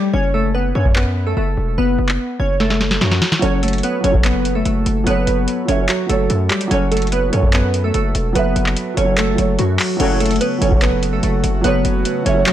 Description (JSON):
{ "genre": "hip hop, trap", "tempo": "146 BPM", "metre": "4/4", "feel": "half-time", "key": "F# minor", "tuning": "A4 = 440 Hz", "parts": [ { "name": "glassy digital keys", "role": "melody", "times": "0.0-12.5 s", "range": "F#3 to C#5", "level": "-19 LUFS", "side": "equal", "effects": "chorus, tremolo, digital delay" }, { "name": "distorted 808-style bass", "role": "bass", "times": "0.1-12.5 s", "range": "E1 to F#2", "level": "-19 LUFS", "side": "equal", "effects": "distortion" }, { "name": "booming analog drum machine", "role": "drums", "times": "0.9-12.5 s", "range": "crash cymbal, handclaps, hi-hat, kick drum, snare drum", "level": "-19 LUFS", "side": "equal", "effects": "vintage 12-bit sampler grit" }, { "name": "dark concert grand piano", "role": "accompaniment", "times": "3.4-12.5 s", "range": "F#3 to E5", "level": "-21 LUFS", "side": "right 4 dB", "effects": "none" }, { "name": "airy breathy pad", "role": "sustained chords", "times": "10.4-12.5 s", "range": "C#3 to F#4", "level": "-25 LUFS", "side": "equal", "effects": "chorus" }, { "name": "clear brass ensemble", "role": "stabs", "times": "10.0-10.3 s", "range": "A2 to F#3", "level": "-24 LUFS", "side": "left 5 dB", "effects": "none" } ], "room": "digital ambience", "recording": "none", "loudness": "-14 LUFS", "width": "side -11 dB against mid", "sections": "0.0-10.0 A section; 10.0-12.5 B section", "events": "break 0.0-3.4; drum fill 2.6-3.4", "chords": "0.0 F#m" }